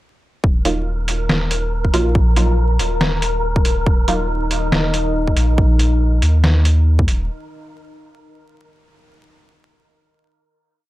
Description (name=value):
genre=deep dubstep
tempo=140 BPM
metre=4/4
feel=swing 57% on 16ths, half-time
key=Eb minor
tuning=A4 = 440 Hz
part: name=saturated sub bass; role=bass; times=0.4-7.3 s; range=Eb1 to Eb2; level=-17 LUFS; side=equal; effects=none
part: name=electronic kick drum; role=drums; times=0.4-7.1 s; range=none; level=-16 LUFS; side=equal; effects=none
part: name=wind-like tuned noise texture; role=texture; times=0.8-5.6 s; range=Bb4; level=-26 LUFS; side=left 1 dB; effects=built-in reverb
part: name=filtered dub chord stab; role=stabs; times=0.7-4.3 s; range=Gb3 to F4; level=-24 LUFS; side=right 2 dB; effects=ensemble chorus, dub echo
part: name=trip hop sampler-style drum kit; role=drums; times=0.7-7.2 s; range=hi-hat, snare drum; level=-20 LUFS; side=equal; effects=none
part: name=deep dark ambient pad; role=sustained chords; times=4.3-5.6 s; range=Eb4 to Eb5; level=-25 LUFS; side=left 1 dB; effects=chorus, built-in reverb
room=little or no reverb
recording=dry, gritty hardware recording, transformer saturation, vinyl crackle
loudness=-14 LUFS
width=side -16 dB against mid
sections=0.4-7.3 drop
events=drop 0.4-7.3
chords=0.4 Eb5